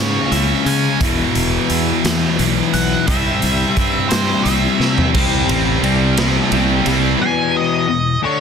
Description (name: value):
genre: quiet-loud alternative rock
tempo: 58 BPM (dotted quarters)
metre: 6/8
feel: straight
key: unclear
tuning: A4 = 440 Hz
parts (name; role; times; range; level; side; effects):
- octave-fuzz lead guitar; melody; 0.0-8.4 s; C5 to G#5; -21 LUFS; right 2 dB; distortion, tape echo
- distorted electric guitar; riff; 0.0-8.4 s; E2 to D4; -19 LUFS; left 11 dB; distortion
- scooped high-gain guitar; riff; 0.0-7.2 s; E2 to C#4; -20 LUFS; right 15 dB; distortion
- fuzz fingered electric bass; bass; 0.0-7.1 s; E1 to C#3; -20 LUFS; right 1 dB; overdrive
- raw garage drum kit; drums; 0.3-7.0 s; crash cymbal, hi-hat, kick drum, ride cymbal, snare drum, toms; -21 LUFS; right 1 dB; none
- fuzz guitar; riff; 5.1-7.2 s; C3 to C4; -21 LUFS; right 1 dB; distortion
room: studio reverb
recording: dense, heavily limited modern master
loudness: -14 LUFS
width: side -6 dB against mid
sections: 0.0-5.1 A section; 5.1-7.2 B section; 7.2-8.4 C section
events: lead electric guitar solo 0.0-5.1; drum fill 4.8-5.1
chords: 0.0 C#5; 1.0 E5; 3.1 C; 5.1 C5; 7.2 E5